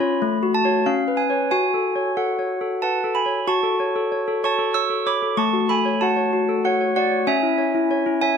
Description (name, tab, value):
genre	classical, lullaby for handbells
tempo	94 BPM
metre	3/4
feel	straight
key	F# minor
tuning	A4 = 440 Hz
part	handbells	solo	0.0-8.4 s	A3 to E6	-18 LUFS	equal	none
room	light reverb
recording	close, detailed microphones, lossy compression artefacts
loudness	-18 LUFS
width	side -6 dB against mid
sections	0.0-3.5 A section; 3.5-8.4 B section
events	none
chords	0.2 F#m/A; 0.9 C#7; 1.5 F#m; 5.4 F#m/A; 7.3 C#m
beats	0.21 0.85 | 1.50 2.16 2.81 | 3.47 4.11 4.74 | 5.37 6.01 6.64 | 7.28 7.91